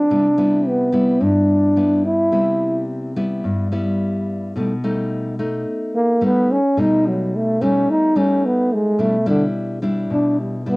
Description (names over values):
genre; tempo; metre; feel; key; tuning
bossa nova; 108 BPM; 4/4; straight; C major; A4 = 441 Hz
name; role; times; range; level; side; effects
breathy trombone; melody; 0.0-10.8 s; D3 to E4; -16 LUFS; equal; none
nylon-string guitar; accompaniment; 0.0-10.8 s; G2 to E4; -20 LUFS; left 1 dB; cassette tape
room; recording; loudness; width
light reverb; home recording on cassette; -16 LUFS; side -25 dB against mid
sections
0.0-10.8 A section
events
trombone solo 0.0-10.8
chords
0.1 Cmaj7; 4.5 B7b13; 9.0 Em7/B